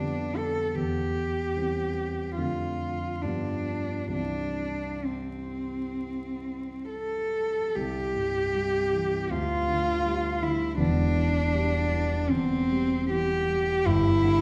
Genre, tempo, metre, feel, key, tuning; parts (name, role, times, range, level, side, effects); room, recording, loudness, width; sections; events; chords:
classical, romantic duo for cello and grand piano; 62-83 BPM; 4/4; rubato; C major; A4 = 440 Hz
warm cello; melody; 0.0-14.4 s; C4 to A4; -30 LUFS; equal
dark concert grand piano; accompaniment; 0.0-14.4 s; E1 to D4; -32 LUFS; equal
wet recital hall reverb, RT60 1.4 s; heard from further back in the room, vinyl crackle; -28 LUFS; mono
0.0-7.8 A section; 7.8-14.4 B section
0.0 G7/F; 0.8 C/E; 2.4 Dm/F; 3.2 G7; 4.1 C; 9.3 G5/D; 10.8 C/E; 13.9 G5